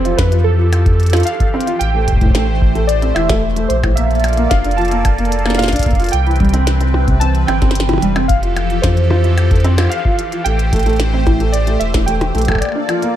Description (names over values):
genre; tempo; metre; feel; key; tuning
IDM; 111 BPM; 4/4; straight; unclear; A4 = 439 Hz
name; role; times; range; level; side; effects
warbly lo-fi synth keys; melody; 0.0-13.2 s; A4 to A5; -21 LUFS; right 2 dB; chorus, tape echo
phased analog pad; sustained chords; 0.0-13.2 s; C3 to D5; -22 LUFS; equal; phaser, chorus
felt-muted upright piano; arpeggios; 0.0-13.1 s; A2 to A4; -20 LUFS; right 1 dB; digital delay
warm sub bass; bass; 0.0-12.6 s; E1 to F2; -16 LUFS; equal; none
glitchy drum kit; drums; 0.1-13.1 s; hi-hat, percussion blips, snare drum; -23 LUFS; left 1 dB; studio reverb
electronic kick drum; drums; 0.2-12.6 s; none; -16 LUFS; equal; studio reverb
room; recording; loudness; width
light reverb; dark, warm production; -12 LUFS; side -11 dB against mid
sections
0.0-13.2 A section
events
none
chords
0.0 Fmaj9; 1.8 Am7; 4.0 Bbmaj7; 6.1 Cmaj7; 8.3 Fmaj9; 10.5 Am7; 12.6 Bbmaj7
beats
0.19 0.73 1.27 | 1.81 2.35 2.89 3.43 | 3.97 4.51 5.05 5.59 | 6.13 6.67 7.21 7.75 | 8.29 8.83 9.38 9.91 | 10.46 11.00 11.54 12.08 | 12.62 13.16